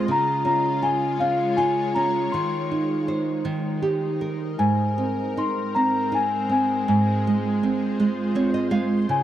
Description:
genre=children's music, lullaby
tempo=54 BPM (dotted quarters)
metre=6/8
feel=rubato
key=Ab major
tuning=A4 = 439 Hz
part: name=celesta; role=melody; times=0.0-9.2 s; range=F5 to C6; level=-24 LUFS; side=left 3 dB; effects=none
part: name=nylon-string guitar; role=accompaniment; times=0.0-9.2 s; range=Ab2 to F5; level=-23 LUFS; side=right 3 dB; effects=none
part: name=shimmering ambient pad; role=sustained chords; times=0.0-9.2 s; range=Eb3 to Db5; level=-28 LUFS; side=left 2 dB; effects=chorus, built-in reverb
room=small room reverb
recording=dry, close 1970s-style studio recording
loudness=-20 LUFS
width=side -12 dB against mid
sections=0.0-9.2 A section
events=nylon-string guitar fill 8.0-9.1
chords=0.1 Db; 2.3 Ab/Eb; 3.4 Eb; 4.6 Abadd9; 6.9 Fm/Ab

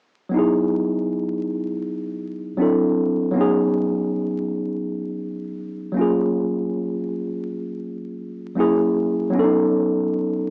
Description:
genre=hip hop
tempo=80 BPM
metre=4/4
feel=swing 57% on 16ths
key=F# major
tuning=A4 = 440 Hz
part: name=tine electric piano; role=accompaniment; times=0.3-10.5 s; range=F#3 to A4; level=-22 LUFS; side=equal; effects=overdrive, cassette tape
room=light reverb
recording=dry, gritty hardware recording, transformer saturation, vinyl crackle, small speaker sound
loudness=-22 LUFS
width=mono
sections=0.3-10.5 A section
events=none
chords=0.3 Emaj7; 2.6 D9; 3.3 C#9sus4; 6.0 F#maj7; 8.6 F#7; 9.3 B9

